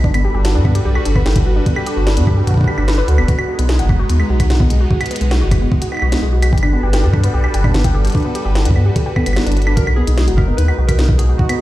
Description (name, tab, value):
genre	IDM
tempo	148 BPM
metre	4/4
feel	straight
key	unclear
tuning	A4 = 440 Hz
part	phased analog pad	sustained chords	0.0-11.6 s	G3 to B4	-23 LUFS	equal	phaser, chorus, vintage 12-bit sampler grit
part	warbly dusty pluck	arpeggios	0.0-11.6 s	G#3 to B4	-22 LUFS	left 1 dB	chorus, dub echo
part	warm sub bass	bass	0.0-11.3 s	D1 to G2	-14 LUFS	equal	none
part	electronic kick drum	drums	0.0-11.5 s	none	-15 LUFS	equal	overdrive
part	glitchy drum kit	drums	0.1-11.6 s	claves, hi-hat, snare drum	-24 LUFS	right 1 dB	overdrive, dub echo
part	warbly lo-fi synth keys	melody	9.8-11.6 s	F#4 to B4	-24 LUFS	right 1 dB	chorus, dub echo
room	light reverb, digital ambience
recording	played on a big sound system in a bare room, stone room reverb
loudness	-12 LUFS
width	side -16 dB against mid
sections	0.0-11.6 A section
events	none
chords	0.0 Gmaj7; 3.3 B6; 6.5 Gmaj7; 9.8 B6